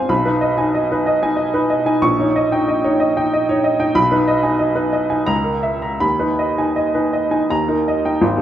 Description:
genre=classical, romantic character piece for solo piano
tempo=79-101 BPM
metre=3/4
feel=rubato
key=G# minor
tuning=A4 = 440 Hz
part: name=warm upright piano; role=solo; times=0.0-8.4 s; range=Ab1 to C#6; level=-15 LUFS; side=equal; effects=none
room=moderate recital hall reverb, RT60 1.8 s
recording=none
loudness=-15 LUFS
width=side -11 dB against mid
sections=0.0-8.2 A section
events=none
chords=0.1 G#m/B; 2.0 D#7/A#; 4.0 G#m/B; 5.3 A#dim/C#; 6.0 G#m/D#; 7.5 D#

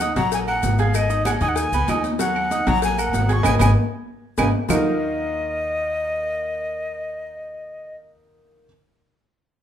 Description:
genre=latin, salsa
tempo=192 BPM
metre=4/4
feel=straight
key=Eb minor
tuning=A4 = 439 Hz
part: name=breathy bright jazz flute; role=melody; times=0.0-8.0 s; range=Eb5 to Db6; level=-25 LUFS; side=left 1 dB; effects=none
part: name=bright baby grand piano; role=accompaniment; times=0.0-8.7 s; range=Eb3 to Ab6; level=-25 LUFS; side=right 2 dB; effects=none
part: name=upright bass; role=bass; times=0.0-8.7 s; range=Ab1 to Eb2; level=-23 LUFS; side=equal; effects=none
part: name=congas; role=percussion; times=0.0-4.8 s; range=none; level=-28 LUFS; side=left 2 dB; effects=none
part: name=cowbell and bongos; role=percussion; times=0.0-4.8 s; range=none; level=-32 LUFS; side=left 6 dB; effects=none
part: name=maracas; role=percussion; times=0.0-4.8 s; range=none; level=-35 LUFS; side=left 8 dB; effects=none
part: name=timbales and agogo bells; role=percussion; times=0.0-4.8 s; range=none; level=-30 LUFS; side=right 4 dB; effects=none
part: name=claves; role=percussion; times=0.5-4.8 s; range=none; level=-32 LUFS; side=right 7 dB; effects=none
room=light reverb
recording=minimal, uncompressed stereo recording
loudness=-19 LUFS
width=side -9 dB against mid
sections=0.0-4.7 A section; 4.7-7.2 B section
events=band accent 3.4-4.7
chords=0.0 Ebm; 0.9 Abm; 2.2 Ebm; 3.4 Abm; 4.7 Ebmadd9

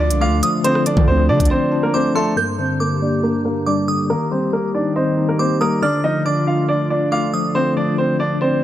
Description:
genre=hip hop, drill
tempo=139 BPM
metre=4/4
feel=half-time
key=G minor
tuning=A4 = 440 Hz
part: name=warm baby grand piano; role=melody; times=0.0-8.6 s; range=A3 to F5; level=-20 LUFS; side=right 1 dB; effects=low-pass filter, tape echo
part: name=glassy synth bell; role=second line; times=0.0-7.5 s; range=C6 to G6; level=-25 LUFS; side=right 2 dB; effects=chorus, tape echo
part: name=bell-like tine electric piano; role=accompaniment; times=0.0-8.6 s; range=G2 to Eb5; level=-20 LUFS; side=left 2 dB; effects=fast stereo tremolo, low-pass filter
part: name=hollow soft pad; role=sustained chords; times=0.0-8.6 s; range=D3 to G4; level=-25 LUFS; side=right 1 dB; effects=chorus, low-pass filter
part: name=long sustained 808-style bass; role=bass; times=0.0-1.5 s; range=C2 to D3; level=-17 LUFS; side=equal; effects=none
part: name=drill drum kit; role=drums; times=0.1-1.5 s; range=hi-hat, kick drum, rim click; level=-19 LUFS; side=equal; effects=none
room=light reverb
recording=none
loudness=-15 LUFS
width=side -12 dB against mid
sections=0.0-2.4 A section; 2.4-8.6 B section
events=break 1.5-2.4; filter sweep 2.4-8.6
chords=0.0 Dm; 2.4 Gm; 4.1 Eb; 5.8 Dm

